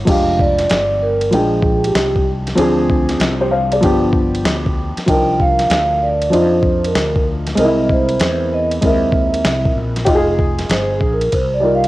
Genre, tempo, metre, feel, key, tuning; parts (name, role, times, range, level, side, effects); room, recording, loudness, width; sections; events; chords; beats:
hip hop, jazz-hop; 96 BPM; 4/4; swing 65% on 16ths; F dorian; A4 = 439 Hz
mellow fretless electric bass; bass; 0.0-11.9 s; F1 to F2; -22 LUFS; equal; lush chorus
vibraphone with soft mallets; melody; 0.1-11.9 s; G4 to G5; -18 LUFS; right 2 dB
dark upright piano; accompaniment; 0.1-11.9 s; F3 to G5; -17 LUFS; equal; cassette tape
dusty soul sampler-style drum kit; drums; 0.1-11.9 s; crash cymbal, hi-hat, kick drum, ride cymbal, snare drum; -19 LUFS; equal; cassette tape
light reverb, digital ambience; home recording on cassette; -13 LUFS; side -17 dB against mid
0.1-10.1 A section; 10.1-11.9 B section
vibraphone solo 10.1-11.9
0.1 Fm69; 2.6 Dm7b5; 3.8 G7; 5.1 Cm11; 7.6 C7alt; 10.1 Fm9
| 0.07 0.70 1.32 1.95 | 2.58 3.20 3.83 4.45 | 5.08 5.70 6.33 6.95 | 7.58 8.20 8.82 9.45 | 10.07 10.70 11.32